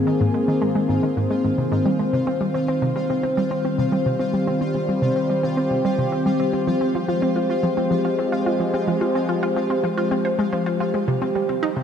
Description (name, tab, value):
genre	ambient, sequencer-driven space music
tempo	109 BPM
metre	4/4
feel	straight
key	C minor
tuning	A4 = 440 Hz
part	sweeping resonant pad	sustained chords	0.0-11.8 s	Eb3 to C5	-21 LUFS	left 1 dB	lush chorus
part	analog pluck	riff	0.0-11.8 s	Ab2 to C5	-24 LUFS	equal	chorus, ping-pong delay
part	pulsing gated texture	texture	0.0-11.8 s	C4 to F5	-36 LUFS	equal	chorus, built-in reverb
part	soft octave-layered synth lead	melody	11.1-11.8 s	G4	-25 LUFS	right 7 dB	chorus, cassette tape
room	wet huge ambient reverb, RT60 7.6 s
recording	cassette tape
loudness	-19 LUFS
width	side -8 dB against mid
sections	0.0-11.8 A section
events	fade-in on synth texture 0.0-11.8; filter sweep on synth arpeggio sound 0.0-11.8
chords	0.0 Abadd9; 2.3 Cm; 6.7 Fmadd9; 11.1 Cm